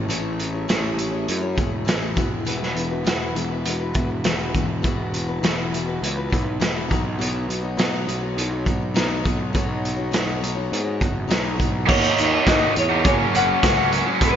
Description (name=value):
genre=quiet-loud alternative rock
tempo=102 BPM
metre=4/4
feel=straight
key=unclear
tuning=A4 = 441 Hz
part: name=picked steel-string acoustic guitar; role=arpeggios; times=0.0-11.8 s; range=E3 to C#5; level=-28 LUFS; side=left 4 dB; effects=slapback echo, analog delay
part: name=fuzz picked electric bass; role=bass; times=0.0-14.4 s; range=E1 to G#2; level=-26 LUFS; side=equal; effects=overdrive
part: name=raw garage drum kit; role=drums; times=0.1-14.3 s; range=crash cymbal, hi-hat, kick drum, snare drum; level=-22 LUFS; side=right 1 dB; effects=none
part: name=electric guitar through a small old amp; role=melody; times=11.9-14.4 s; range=B4 to F#5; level=-22 LUFS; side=left 2 dB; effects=none
part: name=raw garage guitar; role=riff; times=11.9-14.4 s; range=D#3 to F#4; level=-20 LUFS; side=right 2 dB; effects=overdrive
room=moderate lush hall reverb, RT60 2.7 s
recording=big arena sound, nothing above 7.4 kHz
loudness=-19 LUFS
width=side -9 dB against mid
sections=0.0-11.9 A section; 11.9-14.4 B section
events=none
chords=0.0 Amaj7; 2.2 Esus2; 6.9 Badd9; 11.9 D#m7; 13.0 F#